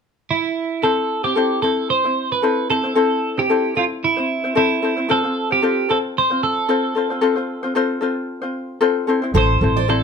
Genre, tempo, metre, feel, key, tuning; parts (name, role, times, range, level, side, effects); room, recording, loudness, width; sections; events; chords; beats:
acoustic pop; 113 BPM; 4/4; swing 55% on 16ths; A minor; A4 = 440 Hz
twelve-string electric guitar; melody; 0.3-10.0 s; E4 to C5; -20 LUFS; right 4 dB
ukulele; accompaniment; 0.8-10.0 s; C4 to C5; -19 LUFS; left 4 dB
fingerpicked steel-string acoustic guitar; arpeggios; 9.3-9.9 s; C5 to D5; -25 LUFS; right 4 dB
upright bass; bass; 9.3-10.0 s; A1; -18 LUFS; right 2 dB
moderate studio reverb, RT60 0.7 s; band playing live in one room; -17 LUFS; side -6 dB against mid
0.8-9.3 A section
0.0 N.C.; 0.8 Am; 5.1 F; 9.1 Am
0.29 | 0.83 1.36 1.89 2.42 | 2.96 3.49 4.02 4.56 | 5.09 5.62 6.15 6.69 | 7.22 7.75 8.28 8.82 | 9.35 9.88